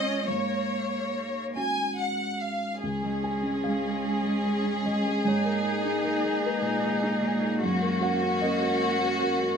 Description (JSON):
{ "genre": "neoclassical piano and strings", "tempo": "46-51 BPM (dotted quarters)", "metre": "6/8", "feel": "rubato", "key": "unclear", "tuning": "A4 = 438 Hz", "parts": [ { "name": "rich chamber violin section", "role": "melody", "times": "0.0-9.6 s", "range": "F#4 to G#5", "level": "-29 LUFS", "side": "left 1 dB", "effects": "none" }, { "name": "rich cello", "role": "second line", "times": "0.0-9.6 s", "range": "G#3 to C#4", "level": "-35 LUFS", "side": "right 2 dB", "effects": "none" }, { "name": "felt-muted upright piano", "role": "accompaniment", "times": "0.0-9.6 s", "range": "C#2 to G#5", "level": "-29 LUFS", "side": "right 1 dB", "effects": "none" }, { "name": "warm viola", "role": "accompaniment", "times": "2.8-9.6 s", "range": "C#4 to D#4", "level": "-33 LUFS", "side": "equal", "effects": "none" }, { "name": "dark analog pad", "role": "sustained chords", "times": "3.6-9.6 s", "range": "G#3 to G#4", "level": "-35 LUFS", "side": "left 2 dB", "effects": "none" } ], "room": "moderate studio reverb, RT60 0.6 s", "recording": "none", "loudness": "-25 LUFS", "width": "side -6 dB against mid", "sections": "0.0-2.8 A section; 2.8-9.6 B section", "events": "none", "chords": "0.3 F#/G#; 2.8 C#; 5.3 G#madd9; 7.6 F#" }